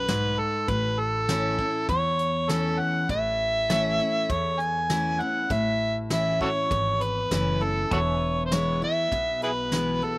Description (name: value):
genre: honky-tonk and classic country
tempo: 100 BPM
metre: 4/4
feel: straight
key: A major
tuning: A4 = 440 Hz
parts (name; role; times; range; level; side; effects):
- overdriven harmonica; melody; 0.0-10.2 s; E4 to G#5; -25 LUFS; right 1 dB; slapback echo
- picked steel-string acoustic guitar; accompaniment; 0.0-10.2 s; E2 to E4; -28 LUFS; left 2 dB; none
- upright bass; bass; 0.0-10.0 s; E1 to E2; -33 LUFS; equal; none
- soft brush drum kit; drums; 0.1-9.9 s; hi-hat, kick drum, snare drum; -29 LUFS; equal; none
- pedal steel guitar; sustained chords; 3.7-10.2 s; A4 to G#5; -38 LUFS; left 1 dB; none
room: little or no reverb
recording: recorded outdoors, with no room sound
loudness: -23 LUFS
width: side -21 dB against mid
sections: 0.0-10.2 A section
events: none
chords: 0.0 E (rootless); 0.7 A; 7.9 E